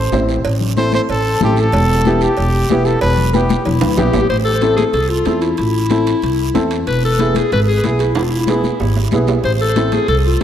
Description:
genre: latin, cumbia.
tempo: 187 BPM.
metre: 4/4.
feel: straight.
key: A harmonic minor from 4.3 s.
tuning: A4 = 440 Hz.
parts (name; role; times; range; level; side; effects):
warm trumpet; melody; 0.0-3.7 s; G4 to C5; -19 LUFS; equal; tape echo.
upright bass; bass; 0.0-10.4 s; E1 to E2; -17 LUFS; right 1 dB; none.
warm upright piano; accompaniment; 0.1-10.4 s; B3 to C5; -20 LUFS; right 1 dB; none.
congas; percussion; 0.1-10.4 s; none; -22 LUFS; left 6 dB; none.
guiro; percussion; 0.1-10.4 s; none; -31 LUFS; right 8 dB; none.
timbales and cowbell; percussion; 0.1-10.4 s; none; -25 LUFS; right 6 dB; none.
bright clarinet; second line; 3.6-10.4 s; E4 to C5; -17 LUFS; left 3 dB; tape echo.
room: wet plate reverb, RT60 2.5 s.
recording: dreamy mix soaked in reverb.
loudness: -13 LUFS.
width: side -10 dB against mid.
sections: 0.0-4.3 A section; 4.3-10.4 B section.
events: drum fill 3.3-4.3, 8.2-9.4; clarinet solo 4.3-10.4.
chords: 0.0 Am; 1.7 Em; 4.3 Am; 6.9 E; 9.4 Am.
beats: 0.13 | 0.45 0.77 1.09 1.41 | 1.73 2.06 2.38 2.70 | 3.02 3.34 3.66 3.98 | 4.30 4.62 4.95 5.27 | 5.59 5.91 6.23 6.55 | 6.87 7.20 7.52 7.84 | 8.16 8.48 8.80 9.12 | 9.44 9.77 10.09 10.41.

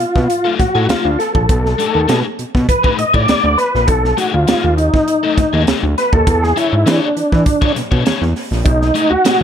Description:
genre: funk.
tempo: 100 BPM.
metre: 4/4.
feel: straight.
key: B mixolydian.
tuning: A4 = 441 Hz.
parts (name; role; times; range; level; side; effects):
tonewheel organ; melody; 0.0-9.4 s; D4 to D#5; -15 LUFS; equal; chorus vibrato, slow rotary speaker.
fat analog bass; bass; 0.0-9.4 s; A#1 to E3; -16 LUFS; equal; none.
crisp fusion drum kit; drums; 0.0-9.4 s; hi-hat, kick drum, snare drum; -18 LUFS; right 1 dB; none.
crunchy overdriven guitar; accompaniment; 0.4-9.4 s; A3 to C#5; -22 LUFS; left 9 dB; none.
room: small room reverb.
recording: dark, warm production.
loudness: -12 LUFS.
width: side -8 dB against mid.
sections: 0.0-8.7 A section.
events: tonewheel organ solo 0.0-8.7.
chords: 0.0 B6; 6.3 E6; 8.7 B6.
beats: 0.29 0.89 | 1.49 2.09 2.69 3.28 | 3.88 4.48 5.08 5.67 | 6.27 6.87 7.46 8.06 | 8.66 9.25.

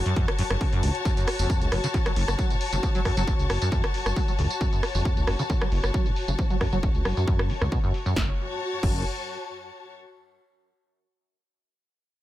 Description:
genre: driving peak-time techno.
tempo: 135 BPM.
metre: 4/4.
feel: straight.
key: F# harmonic minor.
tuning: A4 = 441 Hz.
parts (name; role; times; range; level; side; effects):
detuned saw bass; bass; 0.0-9.0 s; F#1 to C#2; -26 LUFS; equal; sidechain pumping.
warm symphonic string section; texture; 0.0-9.9 s; F#4 to A5; -31 LUFS; left 3 dB; sidechain pumping.
acid bass, saw; riff; 0.1-9.0 s; F#1 to F#3; -29 LUFS; equal; lush chorus, sidechain pumping, tape echo.
techno drum kit; drums; 0.1-8.9 s; crash cymbal, hi-hat, rim click, snare drum, tambourine; -32 LUFS; right 1 dB; overdrive, low-pass filter on hats, small room ambience, low-pass filter on snare, low-pass filter on perc, low-pass filter on cymbals.
electronic kick drum; drums; 0.2-8.9 s; none; -25 LUFS; equal; overdrive, small room ambience.
room: little or no reverb.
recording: none.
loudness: -23 LUFS.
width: side -14 dB against mid.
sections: 0.0-8.2 A section; 8.2-9.9 B section.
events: filter sweep on detuned saw bass 0.0-8.2; filter sweep on acid bass 0.0-8.2.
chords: 0.0 F#m.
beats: 0.16 0.61 | 1.05 1.50 1.94 2.39 | 2.83 3.27 3.72 4.16 | 4.61 5.05 5.50 5.94 | 6.39 6.83 7.28 7.72 | 8.16 8.61 9.05 9.50.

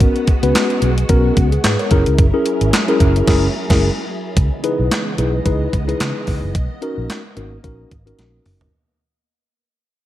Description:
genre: early-eighties boogie funk.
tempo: 110 BPM.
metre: 4/4.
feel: swing 56% on 16ths.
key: unclear.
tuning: A4 = 440 Hz.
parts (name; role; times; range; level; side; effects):
mellow tine electric piano; accompaniment; 0.0-8.7 s; B3 to C#5; -19 LUFS; left 2 dB; medium stereo tremolo.
soft string machine; sustained chords; 0.0-8.7 s; C#3 to D#5; -26 LUFS; equal; ensemble chorus.
fingered electric bass; bass; 0.0-8.7 s; F#1 to C#3; -18 LUFS; equal; none.
crisp 8-bit digital drum machine; drums; 0.0-8.7 s; crash cymbal, handclaps, hi-hat, kick drum, snare drum, toms; -17 LUFS; equal; overdrive, gated reverb.
room: little or no reverb.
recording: none.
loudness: -14 LUFS.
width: side -14 dB against mid.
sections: 0.0-4.4 A section; 4.4-8.7 B section.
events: band accent 3.3-4.4; fade-out 4.4-8.7; drum fill 8.2-8.7.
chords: 0.0 G#m11; 1.9 F#9; 4.4 C#m9; 6.5 Bmaj9.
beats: | 0.00 0.55 1.09 1.64 | 2.19 2.73 3.28 3.82 | 4.37 4.91 5.46 6.00 | 6.55 7.09 7.64 8.19.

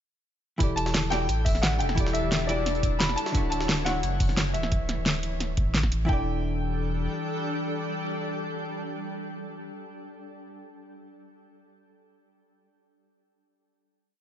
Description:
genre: liquid drum and bass.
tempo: 175 BPM.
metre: 4/4.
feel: straight.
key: E dorian.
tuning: A4 = 437 Hz.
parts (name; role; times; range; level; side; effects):
vintage hollow-body jazz guitar; accompaniment; 0.6-9.8 s; D3 to D5; -33 LUFS; left 2 dB; ping-pong delay.
shimmering ambient pad; sustained chords; 1.3-9.6 s; E3 to G5; -34 LUFS; right 1 dB; chorus, built-in reverb.
saturated sub bass; bass; 0.6-7.1 s; D1 to A1; -29 LUFS; equal; none.
electronic kick drum; drums; 0.6-6.2 s; none; -26 LUFS; equal; none.
jungle sampler-style drum kit; drums; 0.6-4.6 s; hi-hat, snare drum; -35 LUFS; equal; high-pass filter on hats, high-pass filter on snare, high-pass filter on room.
pop drum kit; drums; 0.6-6.0 s; hi-hat, snare drum; -29 LUFS; equal; none.
clear baby grand piano; melody; 0.8-9.7 s; D5 to B5; -32 LUFS; left 1 dB; digital delay.
room: light reverb, digital ambience.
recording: nothing above 7.6 kHz.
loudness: -24 LUFS.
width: side -10 dB against mid.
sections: 0.6-6.1 drop; 6.1-8.8 final chord.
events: drop 0.6-6.1.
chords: 0.6 Em11; 3.2 Dmaj9; 6.1 Em7.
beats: | 0.60 0.95 1.29 1.63 | 1.98 2.32 2.66 3.00 | 3.35 3.69 4.03 4.38 | 4.72 5.06 5.40 5.75 | 6.09 6.43 6.78 7.12 | 7.46 7.80 8.15 8.49.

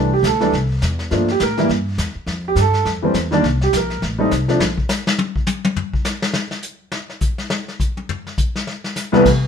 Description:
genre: jazz piano trio.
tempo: 206 BPM.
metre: 4/4.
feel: swing 60% on 8ths.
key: unclear.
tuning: A4 = 440 Hz.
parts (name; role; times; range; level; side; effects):
warm concert grand piano; melody; 0.0-4.6, 9.1-9.2 s; C2 to Bb4; -16 LUFS; right 1 dB; none.
upright bass; bass; 0.0-4.8, 9.3-9.5 s; A1 to A2; -20 LUFS; equal; none.
vintage brush drum kit; drums; 0.2-9.5 s; brushed snare drum, crash cymbal, hi-hat, kick drum, snare drum, toms; -22 LUFS; left 2 dB; none.
room: moderate studio reverb, RT60 0.6 s.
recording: minimal, uncompressed stereo recording.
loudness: -17 LUFS.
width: side -7 dB against mid.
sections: 0.0-9.3 A section.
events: grand piano solo 0.0-9.3; drum solo 4.6-9.3.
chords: 0.0 C6; 1.1 Gm7; 1.7 Em; 2.3 Fmaj7; 3.4 Gmadd11 (rootless); 4.0 F (rootless); 4.6 N.C..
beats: 0.23 0.53 0.82 | 1.11 1.40 1.69 1.98 | 2.27 2.57 2.86 3.15 | 3.44 3.73 4.02 4.31 | 4.61 4.90 5.19 5.48 | 5.77 6.06 6.35 6.64 | 6.93 7.22 7.51 7.80 | 8.09 8.38 8.67 8.96 | 9.25.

